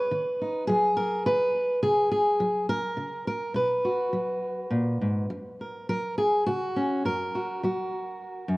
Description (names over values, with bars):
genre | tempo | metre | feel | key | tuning
folk, solo fingerstyle acoustic guitar | 104 BPM | 3/4 | rubato | unclear | A4 = 441 Hz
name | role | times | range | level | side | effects
fingerpicked steel-string acoustic guitar | solo | 0.0-8.6 s | F#2 to B4 | -24 LUFS | equal | none
room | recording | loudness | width
moderate large studio reverb, RT60 1.4 s | worn, warbling old tape, cassette tape, warbly pitch drift | -24 LUFS | side -21 dB against mid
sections
0.0-5.3 A section; 5.3-8.6 B section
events
none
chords
0.1 B/D#; 1.8 F#add9/C#; 3.6 B5; 5.3 F#